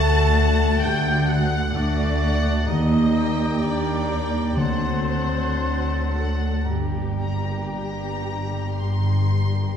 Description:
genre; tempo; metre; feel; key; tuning
classical, slow romantic movement for symphony orchestra; 54-66 BPM; 4/4; rubato; G minor; A4 = 442 Hz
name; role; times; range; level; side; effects
clear symphonic violin section; melody; 0.0-9.8 s; F#5 to C6; -35 LUFS; left 4 dB; none
mellow clarinet; second line; 0.0-9.8 s; D4 to G4; -37 LUFS; equal; none
mellow hollow silver concert flute; second line; 0.0-9.8 s; G5 to A6; -33 LUFS; left 2 dB; none
warm oboe; second line; 0.0-9.7 s; A5 to Bb5; -33 LUFS; equal; none
warm symphonic violin section; second line; 0.0-9.8 s; G4 to A5; -36 LUFS; left 2 dB; none
warm bassoon; accompaniment; 0.0-9.8 s; F#3 to A3; -36 LUFS; right 3 dB; none
warm symphonic viola section; accompaniment; 0.0-9.8 s; G4 to A5; -31 LUFS; equal; none
mellow French horn section; sustained chords; 0.0-9.8 s; G3 to A4; -31 LUFS; left 4 dB; none
concert harp; arpeggios; 0.0-9.8 s; G2 to G5; -34 LUFS; left 3 dB; none
clear symphonic double bass section; bass; 0.0-9.7 s; G1 to Eb2; -24 LUFS; equal; none
rich symphonic cello section; bass; 0.0-9.7 s; D2 to G2; -25 LUFS; equal; none
timpani; percussion; 0.0-6.1 s; D3; -28 LUFS; left 4 dB; none
room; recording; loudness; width
wet scoring stage reverb, RT60 1.7 s; heard from further back in the room; -20 LUFS; side -8 dB against mid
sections
0.0-9.8 A section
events
none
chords
0.0 D; 2.7 Eb; 4.6 D7; 6.6 Gm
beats
0.82 1.74 | 2.66 3.61 4.57 5.58 | 6.65 7.73 8.76

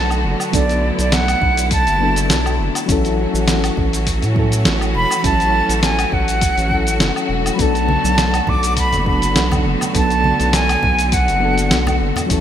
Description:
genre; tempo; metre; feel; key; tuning
sunset chillout; 102 BPM; 4/4; swing 54% on 16ths; B minor; A4 = 440 Hz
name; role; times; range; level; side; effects
bright concert flute; melody; 0.0-12.0 s; D5 to D6; -19 LUFS; right 1 dB; digital delay
soft electric-piano-like synth keys; accompaniment; 0.0-12.4 s; F#3 to A4; -22 LUFS; moving between left 5 dB and right 5 dB; chorus, tremolo, auto-pan, digital delay
clear symphonic string section; sustained chords; 0.0-12.4 s; D3 to F#4; -24 LUFS; left 1 dB; none
round analog bass; bass; 0.0-12.4 s; E1 to A2; -20 LUFS; equal; none
dusty soul sampler-style drum kit; drums; 0.1-12.4 s; hi-hat, shaker, snare drum, woodblock; -21 LUFS; equal; none
electronic kick drum; drums; 0.5-12.4 s; none; -22 LUFS; equal; none
congas; percussion; 7.9-12.3 s; none; -26 LUFS; right 1 dB; none
room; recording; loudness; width
moderate lush hall reverb, RT60 2.2 s; bright 1980s-style digital production; -14 LUFS; side -10 dB against mid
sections
0.0-12.4 A section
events
none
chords
0.0 Bm7; 2.9 A6; 7.6 Bm7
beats
| 0.54 1.12 1.71 2.30 | 2.89 3.48 4.07 4.65 | 5.24 5.83 6.42 7.01 | 7.59 8.18 8.77 9.36 | 9.95 10.54 11.12 11.71 | 12.30

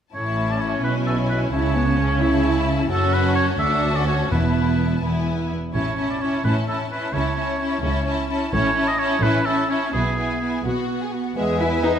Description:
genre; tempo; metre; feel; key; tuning
quick classical-period movement for symphony orchestra; 86 BPM (dotted quarters); 6/8; straight; A major, E major from 8.5 s; A4 = 441 Hz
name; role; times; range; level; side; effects
rich studio violin section; melody; 0.1-11.4 s; F#5 to A5; -34 LUFS; left 6 dB; none
clear oboe; second line; 0.1-12.0 s; G#4 to E5; -26 LUFS; right 1 dB; none
warm studio violin section; second line; 0.1-12.0 s; C#4 to G#5; -27 LUFS; left 3 dB; none
rich studio viola section; accompaniment; 0.1-11.9 s; G#3 to E4; -25 LUFS; right 2 dB; none
dark studio double bass section; bass; 0.1-12.0 s; E1 to E2; -26 LUFS; right 2 dB; none
warm studio cello section; bass; 0.1-12.0 s; D2 to E4; -25 LUFS; equal; none
timpani; percussion; 4.3-5.0 s; E2; -28 LUFS; left 1 dB; none
bright small flute group; second line; 11.4-12.0 s; G#4 to E5; -28 LUFS; left 4 dB; none
dark bassoon; accompaniment; 11.4-12.0 s; B3; -25 LUFS; equal; none
clear French horn section; sustained chords; 11.8-11.9 s; G#4 to B4; -22 LUFS; left 9 dB; none
room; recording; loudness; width
moderate scoring stage reverb, RT60 1.5 s; none; -19 LUFS; side -8 dB against mid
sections
0.1-11.4 A section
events
none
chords
0.1 A; 1.5 A/C#; 2.9 F#m; 3.6 D; 4.3 Esus4; 5.7 A; 7.1 A/C#; 8.5 A; 9.9 E/B; 11.4 E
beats
| 0.14 0.84 | 1.53 2.21 | 2.90 3.60 | 4.32 5.03 | 5.74 6.45 | 7.14 7.83 | 8.52 9.22 | 9.93 10.65 | 11.37

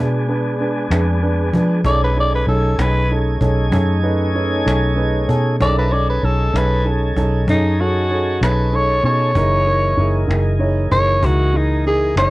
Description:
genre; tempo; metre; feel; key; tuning
slow blues; 64 BPM (dotted quarters); 12/8; straight; B mixolydian; A4 = 440 Hz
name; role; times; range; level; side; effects
dark baby grand piano; accompaniment; 0.0-12.3 s; C#4 to C#5; -22 LUFS; right 2 dB; none
tonewheel organ; sustained chords; 0.0-12.3 s; E3 to G#5; -26 LUFS; equal; slow rotary speaker
vintage muted fingered electric bass; bass; 0.0-12.3 s; F#1 to F3; -18 LUFS; equal; transformer saturation
cajon; drums; 0.6-12.3 s; none; -25 LUFS; equal; none
growling tenor saxophone; melody; 1.9-12.3 s; D#4 to D5; -18 LUFS; equal; none
room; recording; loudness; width
light reverb; worn, warbling old tape, cassette tape, warbly pitch drift; -14 LUFS; side -19 dB against mid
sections
0.0-12.3 A section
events
none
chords
0.0 Fdim7; 1.9 B13; 9.4 F#13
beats
0.92 | 1.86 2.79 3.73 4.67 | 5.61 6.54 7.48 8.42 | 9.35 10.29 11.23 12.16

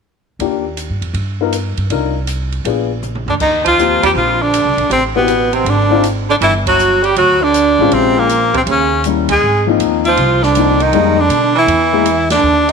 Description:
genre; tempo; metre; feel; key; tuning
jazz, small-group swing and bop; 160 BPM; 4/4; swing 66% on 8ths; Eb major; A4 = 436 Hz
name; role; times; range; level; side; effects
warm upright piano; accompaniment; 0.4-12.0 s; F3 to A#4; -18 LUFS; left 12 dB; none
upright bass; bass; 0.4-12.7 s; G1 to Cb3; -20 LUFS; right 1 dB; none
open jazz drum kit; drums; 0.4-12.7 s; crash cymbal, hi-hat, kick drum, ride cymbal, snare drum, toms; -25 LUFS; right 3 dB; none
bright tenor saxophone; melody; 3.3-12.7 s; Bb3 to Ab4; -14 LUFS; left 3 dB; none
warm baritone saxophone; second line; 3.3-12.7 s; Bb2 to Ab3; -16 LUFS; right 12 dB; none
room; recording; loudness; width
moderate echo chamber reverb, RT60 1.8 s, studio reverb; 1960s-style stereo with parts hard left and right; -11 LUFS; side -5 dB against mid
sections
0.4-3.4 A section; 3.4-12.7 B section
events
drum fill 3.0-3.4; band accent 3.6, 6.6, 9.2, 12.2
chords
0.4 Ebmaj7; 1.2 G7alt; 1.9 Cm11; 2.7 Bb7b9; 3.4 Eb69; 4.9 Am9; 5.7 Ab; 6.4 G5; 7.9 Bbm9; 8.7 Eb7b9; 9.4 Ab69; 10.9 Fm11; 11.7 E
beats
| 0.40 0.78 1.15 1.53 | 1.90 2.28 2.66 3.03 | 3.41 3.78 4.16 4.54 | 4.91 5.29 5.66 6.04 | 6.41 6.79 7.17 7.54 | 7.92 8.29 8.67 9.05 | 9.42 9.80 10.18 10.55 | 10.93 11.30 11.68 12.06 | 12.43

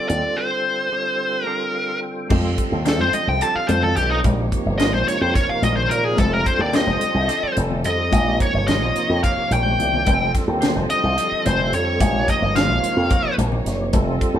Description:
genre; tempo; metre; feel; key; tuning
electric jazz fusion; 217 BPM (eighths); 7/8; straight; F mixolydian; A4 = 439 Hz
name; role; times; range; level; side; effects
bluesy overdriven lead guitar; melody; 0.0-13.3 s; Eb4 to A5; -21 LUFS; left 1 dB; distortion
percussive tonewheel organ; accompaniment; 0.0-14.4 s; C3 to G5; -27 LUFS; right 2 dB; slow rotary speaker, chorus vibrato
slap bass with an envelope filter; bass; 0.1-14.4 s; F1 to Bb2; -22 LUFS; equal; none
crisp fusion drum kit; drums; 0.1-14.3 s; crash cymbal, hi-hat, kick drum, snare drum; -23 LUFS; equal; none
rich studio string section; sustained chords; 2.3-14.4 s; F3 to Eb5; -33 LUFS; left 1 dB; none
congas; percussion; 2.3-14.4 s; none; -27 LUFS; left 5 dB; none
room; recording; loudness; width
moderate stone room reverb, RT60 1.0 s; band playing live in one room; -17 LUFS; side -10 dB against mid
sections
0.0-2.3 A section; 2.3-14.4 B section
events
tonewheel organ fill 1.5-2.3; lead electric guitar solo 2.3-14.4; drum fill 9.5-10.1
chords
0.4 Fadd9; 2.3 F9; 4.2 Bbm6; 6.2 F9; 8.1 Bbm6; 10.1 F9; 12.0 Bbm6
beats
0.09 | 0.37 0.65 0.92 1.20 1.48 1.75 2.03 | 2.31 2.58 2.86 3.14 3.42 3.69 3.97 | 4.25 4.52 4.80 5.08 5.35 5.63 5.91 | 6.19 6.46 6.74 7.02 7.29 7.57 7.85 | 8.13 8.40 8.68 8.96 9.23 9.51 9.79 | 10.07 10.34 10.62 10.90 11.17 11.45 11.73 | 12.00 12.28 12.56 12.83 13.11 13.38 13.66 | 13.94 14.21

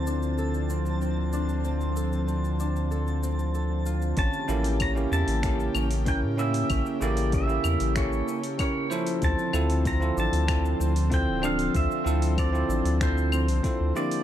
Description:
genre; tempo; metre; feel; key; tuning
sunset chillout; 95 BPM; 4/4; straight; D minor; A4 = 441 Hz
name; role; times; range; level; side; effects
bell-like tine electric piano; accompaniment; 0.0-14.2 s; C#3 to C5; -31 LUFS; right 1 dB; auto-pan, tape echo
airy breathy pad; sustained chords; 0.0-14.2 s; C#3 to G4; -33 LUFS; equal; chorus
Celtic harp; arpeggios; 0.0-14.2 s; C4 to A4; -34 LUFS; left 3 dB; tape echo
round analog bass; bass; 0.0-13.9 s; D1 to A2; -26 LUFS; equal; none
twinkling granular texture; texture; 0.0-4.2 s; A5; -43 LUFS; right 2 dB; built-in reverb
smooth R&B drum kit; drums; 0.1-14.2 s; cabasa, claves, finger snaps, hi-hat; -36 LUFS; left 2 dB; none
pedal steel guitar; melody; 4.2-14.2 s; C5 to Bb5; -32 LUFS; right 2 dB; tape echo
electronic kick drum; drums; 4.2-13.8 s; none; -29 LUFS; equal; none
room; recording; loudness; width
light reverb, digital ambience; dark, warm production; -23 LUFS; side -11 dB against mid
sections
0.0-4.2 A section; 4.2-14.2 B section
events
filter sweep on tine electric piano 0.0-4.2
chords
0.0 Dm7; 4.2 A7b9; 9.2 Dm7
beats
0.38 1.01 | 1.65 2.28 2.91 3.54 | 4.17 4.80 5.43 6.07 | 6.70 7.33 7.96 8.59 | 9.22 9.86 10.49 11.12 | 11.75 12.38 13.01 13.64

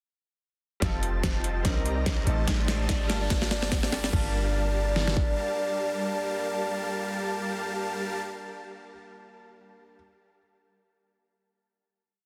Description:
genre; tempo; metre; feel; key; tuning
future bass; 145 BPM; 4/4; swing 56% on 16ths, half-time; G minor; A4 = 440 Hz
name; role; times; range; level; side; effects
soft octave-layered synth lead; melody; 0.8-8.2 s; D5 to Eb5; -36 LUFS; equal; chorus, tremolo, sidechain pumping, dub echo
bright concert grand piano; accompaniment; 0.8-10.0 s; G3 to A5; -43 LUFS; equal; vintage 12-bit sampler grit, sidechain pumping, digital delay
airy dreamy lead; arpeggios; 0.8-8.2 s; A5 to Bb5; -41 LUFS; equal; chorus, sidechain pumping, digital delay
supersaw chords; riff; 0.8-8.2 s; G3 to A5; -36 LUFS; equal; sidechain pumping, low-pass filter, digital delay
warm 808-style bass; bass; 0.8-5.3 s; F1 to C2; -32 LUFS; equal; sidechain pumping
dubstep drum kit; drums; 0.8-5.3 s; kick drum, snare drum; -31 LUFS; equal; overdrive
dubstep drum kit; drums; 0.8-4.2 s; crash cymbal, hi-hat, snare drum; -34 LUFS; equal; overdrive
riser; sound effects; 1.7-4.1 s; none; -44 LUFS; equal; none
room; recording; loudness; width
light reverb; dense, heavily limited modern master; -28 LUFS; mono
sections
0.8-4.1 build; 4.1-7.4 final chord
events
build-up 0.8-4.1; drum fill 0.8-4.1; filter sweep on supersaw synth 0.8-4.1; filter sweep on soft synth lead 0.8-4.1; riser 1.7-4.1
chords
0.8 F9; 1.6 Cm9; 2.3 Am7b5; 3.1 Gm7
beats
| 0.82 1.24 1.65 2.06 | 2.48 2.89 3.30 3.72 | 4.13 4.55 4.96 5.37 | 5.79 6.20 6.62 7.03

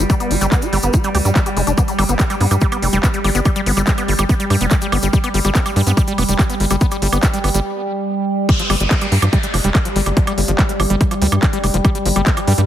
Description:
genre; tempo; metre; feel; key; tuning
psychedelic trance; 143 BPM; 4/4; straight; G major; A4 = 441 Hz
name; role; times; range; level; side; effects
overtone-sweeping drone; sustained chords; 0.0-12.7 s; G3; -22 LUFS; right 1 dB; chorus, built-in reverb, sidechain pumping
overdriven acid bass; riff; 0.0-12.6 s; F3 to G4; -22 LUFS; moving between left 6 dB and right 5 dB; auto-pan, sidechain pumping, tape echo
tight sequencer bass; bass; 0.0-12.6 s; F1 to G2; -17 LUFS; equal; none
electronic kick drum; drums; 0.1-12.3 s; none; -15 LUFS; equal; overdrive
techno drum kit; drums; 0.1-12.7 s; handclaps, hi-hat, woodblock; -23 LUFS; right 1 dB; overdrive
egg shaker; percussion; 0.1-7.6 s; none; -29 LUFS; left 4 dB; none
downlifter; sound effects; 8.5-11.8 s; none; -26 LUFS; equal; none
room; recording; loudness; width
digital ambience; heavily compressed radio sound, multiband compression; -14 LUFS; side -11 dB against mid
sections
0.0-8.5 A section; 8.5-12.7 B section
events
filter sweep on acid bass 0.0-8.5; break 7.7-8.5; drop 8.5-12.7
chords
0.0 G5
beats
| 0.10 0.52 0.94 1.36 | 1.78 2.20 2.62 3.04 | 3.45 3.87 4.29 4.71 | 5.13 5.55 5.97 6.39 | 6.81 7.23 7.65 8.07 | 8.49 8.91 9.33 9.75 | 10.17 10.59 11.01 11.43 | 11.85 12.27

